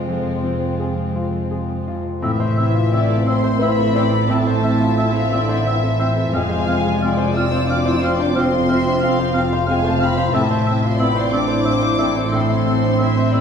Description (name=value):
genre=cinematic, emotional film score for orchestra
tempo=89 BPM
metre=3/4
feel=rubato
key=A harmonic minor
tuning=A4 = 438 Hz
part: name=warm studio violin section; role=melody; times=0.0-13.4 s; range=F4 to E6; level=-27 LUFS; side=left 3 dB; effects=none
part: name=dark studio violin section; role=second line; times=0.0-13.4 s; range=C4 to F5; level=-27 LUFS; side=equal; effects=none
part: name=bright concert grand piano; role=accompaniment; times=0.0-13.4 s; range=F2 to C5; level=-24 LUFS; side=left 2 dB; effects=none
part: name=dark studio viola section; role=accompaniment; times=0.0-13.4 s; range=Ab3 to F4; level=-26 LUFS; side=right 3 dB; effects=none
part: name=concert harp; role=arpeggios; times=0.0-13.4 s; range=F2 to C5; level=-25 LUFS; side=left 3 dB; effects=none
part: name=warm studio cello section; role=bass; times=0.0-13.4 s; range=F2 to A2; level=-25 LUFS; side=right 3 dB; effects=none
part: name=clear clarinet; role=second line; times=2.2-13.4 s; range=C4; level=-28 LUFS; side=left 1 dB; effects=none
part: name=hollow concert flute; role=second line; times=2.2-13.4 s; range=E6 to F6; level=-28 LUFS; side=right 2 dB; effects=none
part: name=mellow French horn section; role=sustained chords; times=2.2-13.4 s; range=D3 to B4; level=-23 LUFS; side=left 2 dB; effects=none
part: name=warm studio double bass section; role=bass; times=2.2-13.4 s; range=F1 to A1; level=-25 LUFS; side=right 4 dB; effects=none
room=wet recital hall reverb, RT60 1.5 s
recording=heard from further back in the room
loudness=-16 LUFS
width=side -7 dB against mid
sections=0.0-2.2 A section; 2.2-13.4 B section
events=none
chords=0.0 Fm; 2.2 Am; 6.3 Fm; 10.3 Am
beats=| 0.09 0.81 1.52 | 2.23 2.93 3.62 | 4.30 4.98 5.66 | 6.34 7.02 7.70 | 8.37 9.03 9.69 | 10.35 11.01 11.66 | 12.33 13.00